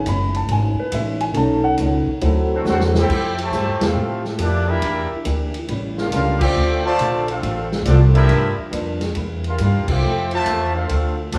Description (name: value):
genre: jazz, big band swing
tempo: 139 BPM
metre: 4/4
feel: swing 67% on 8ths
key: F major from 3.1 s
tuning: A4 = 444 Hz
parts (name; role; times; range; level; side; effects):
- clear concert grand piano; accompaniment; 0.0-3.0 s; F#3 to B5; -24 LUFS; equal; none
- upright bass; bass; 0.0-11.4 s; Gb1 to A2; -22 LUFS; equal; none
- picked old ladder-braced acoustic guitar; accompaniment; 0.1-11.4 s; G2 to G4; -28 LUFS; equal; none
- swinging big-band drum kit; drums; 0.1-11.4 s; crash cymbal, hi-hat, kick drum, ride cymbal, snare drum; -30 LUFS; equal; none
- warm trumpet section; melody; 2.5-11.4 s; Bb3 to A5; -25 LUFS; equal; none
- muted trombone section; second line; 2.5-11.4 s; C3 to G4; -30 LUFS; equal; none
room: moderate scoring stage reverb, RT60 1.5 s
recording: small room ambience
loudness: -19 LUFS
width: mono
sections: 0.0-3.1 A section; 3.1-11.4 B section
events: grand piano solo 0.0-3.1; drum fill 2.7-3.1; band accent 3.7, 6.3, 9.8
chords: 0.0 Amaj9#11; 1.4 Cb9; 2.2 D7; 3.1 Fmaj9; 4.8 Em7b5; 5.7 A7; 6.6 Dm7; 8.3 Gm7; 9.2 C7; 10.0 Fmaj7